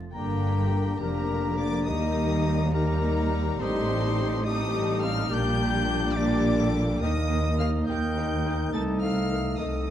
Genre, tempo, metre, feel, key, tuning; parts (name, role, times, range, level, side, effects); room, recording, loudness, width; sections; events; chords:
quick classical-period movement for symphony orchestra; 70 BPM (dotted quarters); 6/8; straight; G minor; A4 = 440 Hz
rich chamber violin section; melody; 0.1-9.9 s; G5 to A6; -36 LUFS; left 4 dB
clear clarinet; second line; 0.1-9.9 s; G4 to Bb4; -37 LUFS; left 3 dB
clear oboe; second line; 0.1-9.9 s; D5 to Bb5; -36 LUFS; right 1 dB
mellow concert flute; second line; 0.1-9.9 s; G4 to A5; -36 LUFS; equal
rich chamber violin section; second line; 0.1-9.7 s; Bb3 to Bb4; -38 LUFS; left 5 dB
rich chamber viola section; accompaniment; 0.1-9.9 s; D3 to C4; -33 LUFS; equal
mellow French horn section; sustained chords; 0.1-9.9 s; G3 to Eb4; -31 LUFS; left 3 dB
rich studio cello section; bass; 0.1-9.9 s; C2 to Bb2; -31 LUFS; right 1 dB
warm chamber double bass section; bass; 0.1-9.9 s; F1 to Eb2; -29 LUFS; right 1 dB
moderate scoring stage reverb, RT60 2.2 s; vinyl crackle; -23 LUFS; side -10 dB against mid
0.1-9.9 A section
0.1 Gm; 1.9 Eb; 3.6 Am7b5; 5.3 Gm/Bb; 7.0 Eb; 8.7 Adim/C